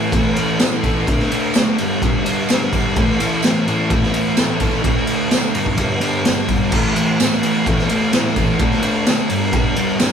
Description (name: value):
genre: garage rock duo or trio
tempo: 128 BPM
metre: 4/4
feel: straight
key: unclear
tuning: A4 = 440 Hz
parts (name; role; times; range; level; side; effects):
- fuzz guitar; riff; 0.0-10.1 s; G2 to D4; -18 LUFS; equal; distortion
- raw garage drum kit; drums; 0.1-10.1 s; crash cymbal, kick drum, ride cymbal, snare drum; -17 LUFS; equal; none
- tambourine; percussion; 0.6-10.1 s; none; -29 LUFS; right 8 dB; none
room: light reverb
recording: band playing live in one room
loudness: -15 LUFS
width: side -7 dB against mid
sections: 0.0-10.1 A section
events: none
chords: 0.0 A5; 1.1 D5; 1.8 G5; 3.0 A5; 4.8 D5; 5.5 G5; 6.7 A5; 8.6 D5; 9.3 G5